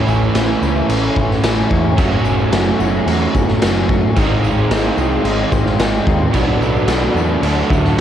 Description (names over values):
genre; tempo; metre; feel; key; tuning
rock, shoegaze and dream pop; 110 BPM; 4/4; straight; unclear; A4 = 441 Hz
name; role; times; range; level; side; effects
chorused pulse-width pad; sustained chords; 0.0-8.0 s; G#4 to C#6; -27 LUFS; left 1 dB; cassette tape
crunchy overdriven guitar; riff; 0.0-8.0 s; G#2 to F#4; -19 LUFS; right 8 dB; reverse reverb, cassette tape
overdriven semi-hollow guitar; riff; 0.0-8.0 s; G#2 to F#4; -22 LUFS; left 10 dB; analog chorus, cassette tape
growling picked electric bass; bass; 0.1-8.0 s; F#1 to E2; -20 LUFS; equal; overdrive
tambourine; percussion; 0.1-7.9 s; none; -42 LUFS; left 11 dB; none
raw garage drum kit; drums; 0.3-8.0 s; crash cymbal, kick drum, snare drum; -17 LUFS; equal; none
room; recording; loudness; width
light reverb; home recording on cassette; -13 LUFS; side -10 dB against mid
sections
0.0-8.0 A section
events
none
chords
0.0 Amaj7; 2.0 F#m7; 4.2 G#6; 6.3 Bm7; 7.4 Dmaj7